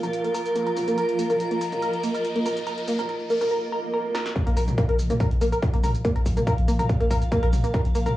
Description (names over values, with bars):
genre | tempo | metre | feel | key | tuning
driving peak-time techno | 142 BPM | 4/4 | straight | unclear | A4 = 440 Hz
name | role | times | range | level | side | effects
tight sequenced synth | riff | 0.0-8.1 s | Bb3 to Bb4 | -26 LUFS | equal | chorus, phaser, overdrive, sidechain pumping, cassette tape, analog delay
punchy analog drum machine | drums | 0.0-8.1 s | hi-hat, shaker, snare drum, toms | -32 LUFS | equal | high-pass filter on hats, cassette tape, high-pass filter on perc, high-pass filter on toms, high-pass filter on snare, high-pass filter on room
riser, swell and impact | sound effects | 0.2-6.0 s | none | -37 LUFS | right 1 dB | none
granular cloud pad | texture | 0.0-8.2 s | F4 to Bb5 | -28 LUFS | right 1 dB | built-in reverb, sidechain pumping, cassette tape
electronic kick drum | drums | 4.4-7.8 s | none | -24 LUFS | equal | distortion, overdrive, cassette tape
saturated sub bass | bass | 4.5-8.1 s | Bb1 | -25 LUFS | equal | tube saturation, sidechain pumping, low-pass filter
room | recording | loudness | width
moderate studio reverb, RT60 0.6 s | home recording on cassette, small room reverb | -21 LUFS | side -15 dB against mid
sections
0.0-4.4 A section; 4.4-8.2 B section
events
build-up 0.0-4.4; riser 0.2-3.5; filter sweep on synth arpeggio sound 0.0-4.4; swell 3.5-4.4; drum fill 4.1; drop 4.4-8.2; impact 4.4-6.0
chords
0.0 Bb5